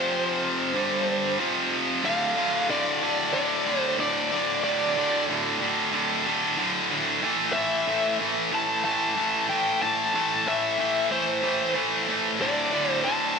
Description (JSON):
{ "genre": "rock", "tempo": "93 BPM", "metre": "4/4", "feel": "straight", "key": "D minor", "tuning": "A4 = 440 Hz", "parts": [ { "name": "bluesy overdriven lead guitar", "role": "melody", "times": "0.0-13.4 s", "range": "C5 to A5", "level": "-27 LUFS", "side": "left 1 dB", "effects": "distortion, digital delay" }, { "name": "tight distorted guitar", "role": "riff", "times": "0.0-13.4 s", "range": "D2 to A3", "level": "-24 LUFS", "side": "equal", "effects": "distortion" } ], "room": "moderate plate reverb, RT60 2.8 s", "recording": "bright 1980s-style digital production", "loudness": "-22 LUFS", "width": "side -5 dB against mid", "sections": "0.0-2.0 A section; 2.0-13.4 B section", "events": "none", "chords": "0.0 F5; 0.7 G5; 1.4 F5; 2.0 D5; 7.2 A5; 12.4 D5" }